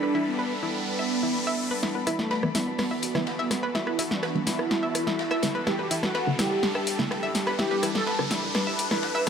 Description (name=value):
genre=melodic techno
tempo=125 BPM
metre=4/4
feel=straight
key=E minor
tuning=A4 = 440 Hz
part: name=mellow synth brass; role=melody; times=0.0-9.3 s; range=A3 to B4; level=-29 LUFS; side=right 1 dB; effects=chorus, phaser, dub echo
part: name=evolving wavetable pad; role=sustained chords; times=0.0-9.3 s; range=E3 to A4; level=-35 LUFS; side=equal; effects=ensemble chorus, built-in reverb
part: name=analog pluck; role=arpeggios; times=0.0-9.2 s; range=E4 to E5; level=-32 LUFS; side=equal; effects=chorus, cassette tape, dub echo
part: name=riser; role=sound effects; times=0.0-9.3 s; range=none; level=-35 LUFS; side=left 1 dB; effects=none
part: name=muted studio string section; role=texture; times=0.0-9.3 s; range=A4 to B5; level=-37 LUFS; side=left 1 dB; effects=none
part: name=deep house drum kit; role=drums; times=1.8-9.3 s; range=hi-hat, rim click, snare drum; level=-29 LUFS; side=equal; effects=overdrive
part: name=open jazz drum kit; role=drums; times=1.8-9.3 s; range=hi-hat, ride cymbal, snare drum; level=-40 LUFS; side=left 2 dB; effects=none
part: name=plucky analog bass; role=bass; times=1.9-9.3 s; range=E1 to G1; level=-44 LUFS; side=equal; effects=none
part: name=filtered dub chord stab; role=stabs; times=2.4-9.3 s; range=D3 to B3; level=-32 LUFS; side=equal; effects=phaser
room=moderate recital hall reverb, RT60 1.4 s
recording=high-pass filter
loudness=-24 LUFS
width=side -7 dB against mid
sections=0.0-1.8 A section; 1.8-9.3 B section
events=riser 0.0-1.8, 1.8-9.3; build-up 1.8-9.3; drum fill 1.8-9.3; filter sweep on synth stab 1.8-9.3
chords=0.0 G; 1.8 Em; 5.7 G